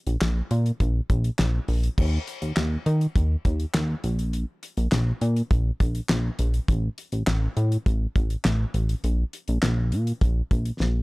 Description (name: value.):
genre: synth-pop.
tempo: 102 BPM.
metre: 4/4.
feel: straight.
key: unclear.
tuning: A4 = 440 Hz.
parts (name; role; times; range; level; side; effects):
chorused synth bass; bass; 0.1-11.0 s; A1 to Eb3; -23 LUFS; equal; tube saturation.
damped 70s drum kit; drums; 0.1-10.9 s; crash cymbal, handclaps, hi-hat, kick drum, snare drum; -25 LUFS; equal; none.
room: little or no reverb.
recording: dry, gritty hardware recording, transformer saturation.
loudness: -22 LUFS.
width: side -23 dB against mid.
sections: 0.0-2.0 A section; 2.0-11.0 B section.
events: drum fill 10.8.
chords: none.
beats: 0.21 0.80 1.39 | 1.98 2.57 3.16 3.74 | 4.33 4.92 5.51 6.10 | 6.68 7.27 7.86 8.45 | 9.04 9.63 10.21 10.80.